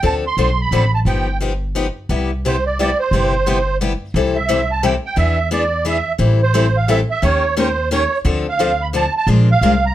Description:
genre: acoustic string swing (jazz manouche).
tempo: 175 BPM.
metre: 3/4.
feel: swing 61% on 8ths.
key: C major.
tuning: A4 = 440 Hz.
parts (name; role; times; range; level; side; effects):
musette accordion; melody; 0.0-9.9 s; C5 to C6; -18 LUFS; right 4 dB; none.
picked steel-string acoustic guitar; accompaniment; 0.0-9.7 s; C3 to Bb4; -20 LUFS; left 5 dB; none.
upright bass; bass; 0.0-9.9 s; G1 to E2; -18 LUFS; equal; none.
room: light reverb.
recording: dark, warm production.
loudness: -14 LUFS.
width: side -13 dB against mid.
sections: 0.0-4.1 A section; 4.1-9.9 B section.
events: none.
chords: 0.0 Dm7; 1.1 Gaug7; 2.1 Cmaj7; 4.1 C6; 5.2 E7; 6.2 Am7; 7.2 Eb7; 8.2 Dm7; 9.3 Bb7.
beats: | 0.03 0.37 0.71 | 1.06 1.40 1.74 | 2.09 2.43 2.77 | 3.11 3.46 3.80 | 4.14 4.49 4.83 | 5.17 5.51 5.85 | 6.20 6.54 6.88 | 7.22 7.56 7.91 | 8.25 8.59 8.93 | 9.27 9.62.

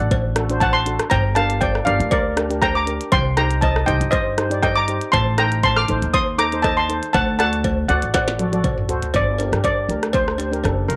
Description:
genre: calypso.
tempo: 120 BPM.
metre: 4/4.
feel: swing 53% on 16ths.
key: unclear.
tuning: A4 = 439 Hz.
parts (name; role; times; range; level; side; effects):
steel pan; melody; 0.0-11.0 s; Bb4 to F6; -23 LUFS; equal; none.
steel pan; accompaniment; 0.0-11.0 s; D4 to D5; -29 LUFS; equal; none.
upright bass; bass; 0.0-11.0 s; F#1 to G2; -25 LUFS; equal; none.
minimal click drum kit; drums; 0.1-11.0 s; hi-hat, kick drum, rim click, snare drum, toms; -26 LUFS; equal; none.
cowbell; percussion; 0.1-10.8 s; none; -30 LUFS; equal; none.
room: light reverb, small room ambience.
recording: none.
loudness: -19 LUFS.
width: mono.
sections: 0.0-9.1 A section; 9.1-11.0 B section.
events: drum fill 8.1-9.1; steel pan solo 9.1-11.0.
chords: 0.0 D; 1.1 Gm; 3.1 Cm; 5.1 Adim; 7.1 D; 9.1 Gm.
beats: 0.12 0.62 | 1.12 1.62 2.12 2.63 | 3.13 3.63 4.13 4.63 | 5.14 5.64 6.14 6.64 | 7.14 7.64 8.14 8.64 | 9.14 9.64 10.14 10.64.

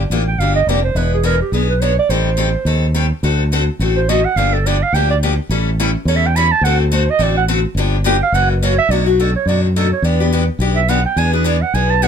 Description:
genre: acoustic string swing (jazz manouche).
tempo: 212 BPM.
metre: 4/4.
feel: swing 58% on 8ths.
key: B minor from 8.9 s.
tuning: A4 = 440 Hz.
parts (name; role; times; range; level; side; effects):
picked steel-string acoustic guitar; accompaniment; 0.0-12.1 s; B2 to A4; -19 LUFS; left 6 dB; none.
fingered electric bass; bass; 0.0-12.1 s; E1 to F#2; -16 LUFS; equal; none.
breathy clarinet; second line; 0.3-12.1 s; F#4 to B5; -18 LUFS; right 7 dB; none.
room: little or no reverb.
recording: close, detailed microphones.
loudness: -13 LUFS.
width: side -7 dB against mid.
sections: 0.0-8.9 A section; 8.9-12.1 A section.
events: clarinet solo 0.0-12.1.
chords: 0.0 Gm7; 1.0 E7; 2.1 Am7b5; 3.2 D7; 4.4 Gm7; 5.5 A7; 6.6 D7; 7.8 Gm7; 8.3 F#7; 8.9 Bm7; 10.0 Em7; 11.2 E7.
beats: 0.11 0.40 0.68 | 0.96 1.25 1.53 1.81 | 2.10 2.38 2.67 2.95 | 3.23 3.52 3.80 4.08 | 4.37 4.65 4.93 5.22 | 5.50 5.78 6.07 6.35 | 6.63 6.92 7.20 7.48 | 7.76 8.05 8.33 8.62 | 8.90 9.18 9.47 9.75 | 10.03 10.32 10.60 10.89 | 11.17 11.45 11.74 12.02.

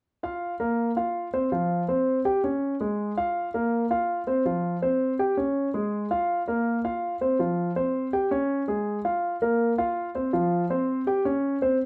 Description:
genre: jazz.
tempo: 163 BPM.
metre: 4/4.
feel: straight.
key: Ab major.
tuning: A4 = 440 Hz.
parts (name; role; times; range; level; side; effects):
warm concert grand piano; solo; 0.2-11.8 s; F3 to G5; -26 LUFS; equal; none.
room: moderate small room reverb, RT60 0.6 s.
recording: none.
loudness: -26 LUFS.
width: mono.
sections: 0.0-11.8 A section.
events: none.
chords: 0.0 Bb5; 0.8 Bbsus2; 1.5 F5; 2.3 Absus4; 3.0 Absus2; 3.7 Bbsus2; 4.5 F5; 5.2 Absus4; 5.9 Absus2; 6.7 Bbsus2; 7.4 F5; 8.1 Absus4; 8.9 Absus2; 9.6 Bbsus2; 10.3 F5; 11.1 C5.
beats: | 0.05 0.42 0.78 1.15 | 1.52 1.89 2.25 2.62 | 2.99 3.35 3.72 4.09 | 4.46 4.83 5.19 5.56 | 5.93 6.29 6.66 7.03 | 7.40 7.76 8.13 8.50 | 8.87 9.23 9.60 9.97 | 10.34 10.70 11.07 11.44.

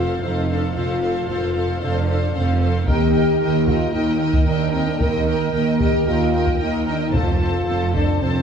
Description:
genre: cinematic, epic orchestral film score.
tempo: 113 BPM.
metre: 4/4.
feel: straight.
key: unclear.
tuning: A4 = 444 Hz.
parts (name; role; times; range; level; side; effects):
warm symphonic violin section; melody; 0.0-8.4 s; F5 to A5; -31 LUFS; left 2 dB; none.
warm symphonic violin section; second line; 0.0-8.4 s; C5 to Eb5; -30 LUFS; left 1 dB; none.
clear symphonic viola section; accompaniment; 0.0-8.4 s; A4 to Bb4; -30 LUFS; right 1 dB; none.
warm French horn section; sustained chords; 0.0-8.4 s; C4 to Bb4; -23 LUFS; left 4 dB; none.
rich studio double bass section; bass; 0.0-8.4 s; F1 to Eb2; -24 LUFS; right 5 dB; none.
rich symphonic cello section; bass; 0.0-8.4 s; Eb2 to F2; -23 LUFS; right 3 dB; none.
taiko ensemble; drums; 2.9-8.4 s; none; -23 LUFS; equal; none.
room: moderate scoring stage reverb, RT60 1.5 s.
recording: small room reverb.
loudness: -17 LUFS.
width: side -7 dB against mid.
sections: 0.0-8.4 A section.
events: none.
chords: 0.0 F; 2.9 Eb; 7.1 F.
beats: 0.22 | 0.75 1.28 1.81 2.34 | 2.88 3.41 3.94 4.46 | 5.00 5.54 6.07 6.60 | 7.14 7.67 8.21.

